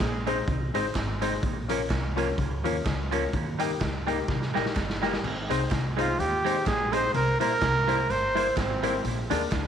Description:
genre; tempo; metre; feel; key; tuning
ska; 126 BPM; 4/4; swing 56% on 8ths; Ab major; A4 = 440 Hz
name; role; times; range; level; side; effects
mellow electric guitar; riff; 0.0-9.7 s; G2 to Eb3; -38 LUFS; left 7 dB; none
dark upright piano; stabs; 0.0-9.6 s; Db4 to C5; -31 LUFS; left 8 dB; none
upright bass; bass; 0.0-9.7 s; G1 to Eb2; -32 LUFS; equal; none
raw garage drum kit; drums; 0.0-9.6 s; crash cymbal, hi-hat, kick drum, snare drum; -31 LUFS; right 1 dB; none
group handclap; percussion; 0.0-9.6 s; none; -45 LUFS; right 10 dB; none
semi-hollow electric guitar; accompaniment; 0.3-9.4 s; F3 to F4; -33 LUFS; right 11 dB; tape echo
breathy trumpet; melody; 6.0-9.0 s; C4 to C5; -26 LUFS; right 2 dB; tape echo
room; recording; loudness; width
moderate echo chamber reverb, RT60 1.7 s; 1960s-style stereo with parts hard left and right; -24 LUFS; side -8 dB against mid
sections
0.0-5.2 A section; 5.2-9.7 B section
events
drum fill 4.3-5.2; trumpet solo 5.2-9.7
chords
0.0 Ab; 1.4 Bbm; 3.3 Eb; 5.2 Ab; 7.1 C7; 9.0 Bb7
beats
0.00 0.48 0.95 | 1.43 1.90 2.38 2.86 | 3.33 3.81 4.28 4.76 | 5.24 5.71 6.19 6.66 | 7.14 7.62 8.09 8.57 | 9.04 9.52

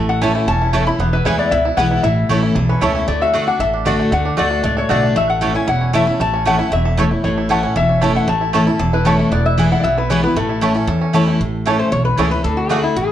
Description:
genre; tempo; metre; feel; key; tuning
bluegrass; 231 BPM; 4/4; straight; A major; A4 = 440 Hz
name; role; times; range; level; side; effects
bluegrass banjo; melody; 0.0-12.8 s; A3 to A4; -25 LUFS; right 5 dB; none
picked steel-string acoustic guitar; accompaniment; 0.0-13.1 s; E2 to F#4; -18 LUFS; left 2 dB; none
upright bass; bass; 0.0-13.1 s; E1 to E2; -20 LUFS; right 1 dB; none
lap resonator guitar; melody; 0.1-13.1 s; E4 to B5; -20 LUFS; left 3 dB; none
lap resonator guitar; second line; 0.1-2.8 s; B4 to B5; -25 LUFS; left 3 dB; none
mandolin; stabs; 0.2-12.8 s; A3 to A5; -22 LUFS; right 5 dB; none
room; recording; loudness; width
moderate large studio reverb, RT60 1.1 s; worn, warbling old tape, cassette tape, warbly pitch drift; -14 LUFS; side -11 dB against mid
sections
0.0-3.1 A section; 3.1-11.4 B section; 11.4-13.1 C section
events
resonator guitar played with a steel bar solo 11.4-13.1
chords
0.0 A; 1.0 E; 2.0 A; 3.1 D; 5.2 A; 9.3 E; 10.4 A; 12.4 D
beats
0.22 0.48 0.74 | 1.00 1.26 1.52 1.78 | 2.04 2.30 2.56 2.82 | 3.08 3.34 3.60 3.86 | 4.12 4.38 4.64 4.90 | 5.16 5.42 5.68 5.94 | 6.20 6.46 6.72 6.98 | 7.24 7.50 7.76 8.02 | 8.28 8.54 8.80 9.06 | 9.32 9.58 9.84 10.10 | 10.36 10.62 10.88 11.14 | 11.40 11.66 11.92 12.18 | 12.44 12.70 12.96

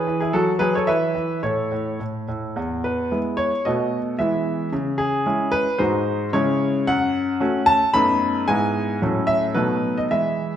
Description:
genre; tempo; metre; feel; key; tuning
classical-period piano sonatina; 111 BPM; 2/4; rubato; E major; A4 = 439 Hz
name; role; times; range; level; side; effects
clear baby grand piano; solo; 0.0-10.6 s; E2 to B5; -19 LUFS; equal; none
room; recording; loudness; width
wet recital hall reverb, RT60 1.3 s; none; -19 LUFS; side -10 dB against mid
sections
0.0-2.6 A section; 2.6-10.6 B section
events
none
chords
0.3 F#m; 0.9 E5; 1.4 N.C.; 2.6 E; 3.7 B7; 4.2 E; 4.7 C#m; 5.8 G#7; 6.3 C#m; 6.9 F#m; 7.9 B7/F#; 8.5 E/G#; 9.0 F#m7/A; 9.6 B7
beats
| 0.34 0.88 | 1.44 2.00 | 2.57 3.12 | 3.66 4.19 | 4.72 5.26 | 5.79 6.33 | 6.88 7.41 | 7.95 8.48 | 9.02 9.56 | 10.12

